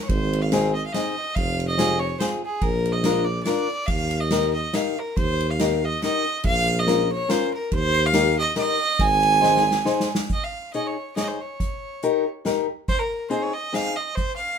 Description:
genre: alpine folk, alpine dance band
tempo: 141 BPM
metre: 3/4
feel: swing 55% on 8ths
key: Ab major, Db major from 10.3 s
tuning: A4 = 440 Hz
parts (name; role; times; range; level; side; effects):
- clear fiddle; melody; 0.0-14.6 s; Ab4 to Ab5; -24 LUFS; right 3 dB; none
- mellow tuba; bass; 0.1-9.8 s; F1 to Eb2; -25 LUFS; right 1 dB; none
- unplugged drum kit; drums; 0.1-14.3 s; hi-hat, kick drum, ride cymbal, snare drum; -27 LUFS; equal; none
- fingerpicked old ladder-braced acoustic guitar; accompaniment; 0.5-13.9 s; C4 to Db5; -24 LUFS; left 5 dB; none
room: moderate studio reverb, RT60 0.6 s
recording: minimal, uncompressed stereo recording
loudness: -20 LUFS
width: side -7 dB against mid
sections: 0.1-10.3 A section; 10.3-14.6 B section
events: drum fill 9.4-10.3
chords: 0.1 Ab; 1.4 Fm; 2.6 Bb; 3.9 Eb; 6.4 Bbm; 7.7 Eb; 9.0 Ab; 10.3 Dbsus2; 11.6 Eb7; 12.9 Ab

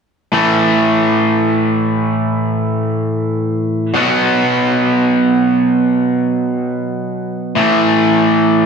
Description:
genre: rock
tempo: free time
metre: none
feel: none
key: unclear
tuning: A4 = 440 Hz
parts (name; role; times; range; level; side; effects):
- cranked stack guitar; solo; 0.3-8.7 s; A2 to B3; -12 LUFS; equal; overdrive, slapback echo
room: wet scoring stage reverb, RT60 2.1 s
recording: big arena sound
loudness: -12 LUFS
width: side -6 dB against mid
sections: 0.3-8.7 A section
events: none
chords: 0.3 A5; 3.9 B5; 7.6 A5

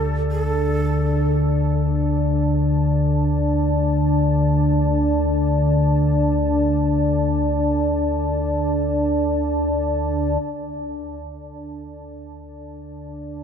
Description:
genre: dark ambient drone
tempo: free time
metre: none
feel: none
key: unclear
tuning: A4 = 440 Hz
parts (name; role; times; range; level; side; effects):
- breathy bright shakuhachi; melody; 0.0-1.4 s; A4; -27 LUFS; right 2 dB; ping-pong delay
- dark analog pad; sustained chords; 0.0-13.4 s; D4 to A5; -22 LUFS; equal; chorus
- deep rumbling drone; drone; 0.0-13.4 s; D2 to D3; -21 LUFS; equal; built-in reverb
room: wet cathedral reverb, RT60 5.4 s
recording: none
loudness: -18 LUFS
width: side -7 dB against mid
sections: 0.0-10.4 A section; 10.4-13.4 B section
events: none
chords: 0.0 D5

